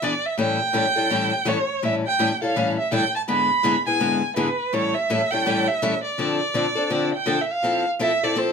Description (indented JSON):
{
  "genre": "jazz",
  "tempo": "166 BPM",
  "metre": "4/4",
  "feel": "swing 61% on 8ths",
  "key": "unclear",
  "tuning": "A4 = 440 Hz",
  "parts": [
    { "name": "warm violin", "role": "melody", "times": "0.0-8.5 s", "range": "B4 to B5", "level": "-22 LUFS", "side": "right 2 dB", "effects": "none" },
    { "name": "picked steel-string acoustic guitar", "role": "accompaniment", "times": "0.0-8.5 s", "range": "G#2 to A4", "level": "-23 LUFS", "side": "left 3 dB", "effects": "none" }
  ],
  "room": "moderate club ambience, RT60 0.5 s",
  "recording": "none",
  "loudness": "-19 LUFS",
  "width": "side -6 dB against mid",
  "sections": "0.0-7.6 A section",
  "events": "none",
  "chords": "0.4 A7; 3.3 E7/G#; 4.7 A7; 6.2 Dm7; 7.6 Fmaj7"
}